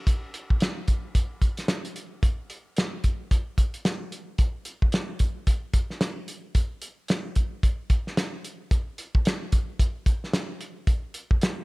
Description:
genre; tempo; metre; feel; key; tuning
indie pop; 111 BPM; 4/4; swing 60% on 16ths; none; none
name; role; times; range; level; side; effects
cloth-damped thuddy drum kit; drums; 0.1-11.6 s; hi-hat, kick drum, snare drum; -24 LUFS; equal; none
room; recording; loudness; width
little or no reverb; none; -24 LUFS; side -25 dB against mid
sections
0.1-8.7 A section; 8.7-11.6 B section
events
none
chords
none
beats
| 0.07 0.61 1.15 1.69 | 2.23 2.77 3.31 3.85 | 4.39 4.93 5.47 6.01 | 6.55 7.09 7.63 8.17 | 8.71 9.25 9.79 10.33 | 10.87 11.41

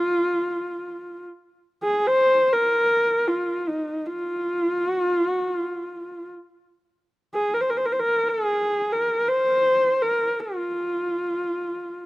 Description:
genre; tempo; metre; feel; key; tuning
mongolian traditional; free time; none; none; F yu mode; A4 = 440 Hz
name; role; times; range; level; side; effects
dark horsehead fiddle; solo; 0.0-12.1 s; Eb4 to C5; -21 LUFS; equal; slapback echo
room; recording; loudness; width
little or no reverb; recorded outdoors, with no room sound; -21 LUFS; side -19 dB against mid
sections
0.0-12.1 A section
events
none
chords
none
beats
free time

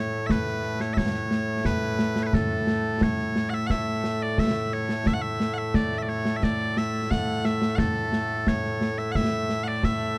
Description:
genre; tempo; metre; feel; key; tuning
scottish traditional, Scottish pipe music; 88 BPM; 4/4; straight; A major; A4 = 439 Hz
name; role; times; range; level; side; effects
loud bright bagpipes; melody; 0.0-10.2 s; A2 to F#5; -28 LUFS; equal; none
concert snare drum and concert bass drum; drums; 0.3-10.0 s; none; -29 LUFS; equal; none
room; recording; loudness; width
light reverb; dark, warm production; -26 LUFS; mono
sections
0.0-10.2 A section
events
none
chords
none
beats
0.29 0.97 1.65 | 2.33 3.02 3.70 4.38 | 5.06 5.74 6.43 7.11 | 7.79 8.47 9.15 9.84

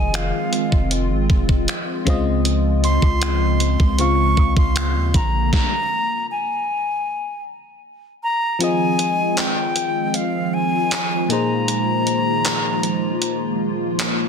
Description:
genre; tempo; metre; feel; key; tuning
contemporary R&B; 78 BPM; 4/4; straight; F minor; A4 = 440 Hz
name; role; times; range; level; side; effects
silver concert flute; melody; 0.0-13.6 s; F5 to Db6; -23 LUFS; equal; ping-pong delay
FM electric piano; accompaniment; 0.0-14.3 s; Bb2 to F5; -24 LUFS; left 4 dB; chorus
hollow soft pad; sustained chords; 0.0-14.3 s; Db3 to F4; -24 LUFS; right 1 dB; ensemble chorus
long sustained 808-style bass; bass; 0.0-5.5 s; F1 to Eb2; -20 LUFS; equal; none
gated 80s digital drum machine; drums; 0.1-14.2 s; finger snaps, handclaps, hi-hat, kick drum, snare drum; -21 LUFS; equal; gated reverb, gated reverb snare, soft clipping on snare
room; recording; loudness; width
little or no reverb; dense, heavily limited modern master; -17 LUFS; side -6 dB against mid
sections
0.0-8.6 A section; 8.6-14.3 B section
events
stop 5.5-8.6; kick muted 8.6-14.3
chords
0.0 Fm7; 2.1 Dbmaj7; 5.1 Bb7; 8.6 Fm7; 11.3 Bb7sus4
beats
0.14 0.91 1.68 | 2.45 3.22 3.99 4.76 | 5.53 6.30 7.07 7.84 | 8.61 9.38 10.14 10.91 | 11.68 12.45 13.22 13.99

